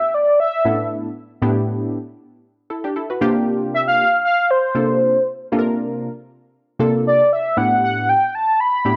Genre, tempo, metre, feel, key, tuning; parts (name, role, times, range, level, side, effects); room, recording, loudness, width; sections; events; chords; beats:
funk; 117 BPM; 4/4; straight; A4 = 440 Hz
warm velvety synth lead; melody; 0.0-9.0 s; C5 to B5; -18 LUFS; equal; chorus, slapback echo
funky polysynth comp; accompaniment; 0.6-9.0 s; A2 to B4; -22 LUFS; equal; chorus
moderate echo chamber reverb, RT60 1.4 s, digital ambience; -18 LUFS; mono
0.0-9.0 A section
0.0 A9sus4; 3.2 C9sus4; 7.6 A9sus4
0.39 0.91 | 1.42 1.93 2.44 2.96 | 3.47 3.98 4.50 5.01 | 5.52 6.03 6.55 7.06 | 7.57 8.09 8.60